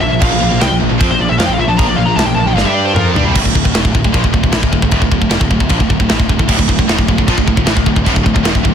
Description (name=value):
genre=heavy metal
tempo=153 BPM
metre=4/4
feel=straight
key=D minor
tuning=A4 = 440 Hz
part: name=high-gain lead guitar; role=melody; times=0.0-3.1 s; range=Bb4 to Bb5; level=-18 LUFS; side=left 2 dB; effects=distortion
part: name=heavy high-gain guitar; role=riff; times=0.0-8.7 s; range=D2 to G4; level=-17 LUFS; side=right 1 dB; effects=distortion
part: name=tight distorted guitar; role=riff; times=0.0-3.4, 6.5-8.7 s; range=D2 to G4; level=-18 LUFS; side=right 1 dB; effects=distortion
part: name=fuzz picked electric bass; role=bass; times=0.0-8.7 s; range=D1 to G2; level=-17 LUFS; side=equal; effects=overdrive
part: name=tight metal drum kit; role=drums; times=0.2-8.7 s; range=china cymbal, crash cymbal, kick drum, snare drum, toms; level=-14 LUFS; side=equal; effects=none
room=little or no reverb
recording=dense, heavily limited modern master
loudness=-10 LUFS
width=side -8 dB against mid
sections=0.0-3.4 A section; 3.4-8.7 B section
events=lead electric guitar solo 0.0-3.4; drum fill 2.6-3.4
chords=0.0 Bb5; 3.4 D5